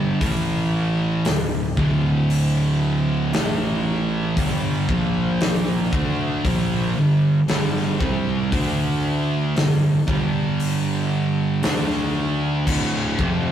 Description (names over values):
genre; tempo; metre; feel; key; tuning
stoner and doom metal; 58 BPM; 4/4; straight; D minor; A4 = 440 Hz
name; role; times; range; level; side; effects
heavy high-gain guitar; riff; 0.0-13.5 s; D2 to D4; -31 LUFS; left 1 dB; distortion
thick fuzz guitar; riff; 0.0-13.5 s; D2 to D4; -24 LUFS; left 3 dB; distortion
thick fuzz guitar; riff; 0.0-13.5 s; D2 to D4; -23 LUFS; right 4 dB; distortion
fuzz fingered electric bass; bass; 0.0-13.5 s; D1 to D2; -30 LUFS; left 1 dB; overdrive
big rock drum kit; drums; 0.2-13.4 s; crash cymbal, hi-hat, kick drum, snare drum; -25 LUFS; left 1 dB; none
room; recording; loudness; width
moderate studio reverb, RT60 0.6 s; rough rehearsal-room recording, warm saturation; -18 LUFS; side -10 dB against mid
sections
0.0-13.5 A section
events
none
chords
0.2 A5; 1.3 D5; 3.3 A5; 4.4 G5; 4.9 Bb5; 5.9 G5; 8.5 D5; 9.6 G5; 11.6 D5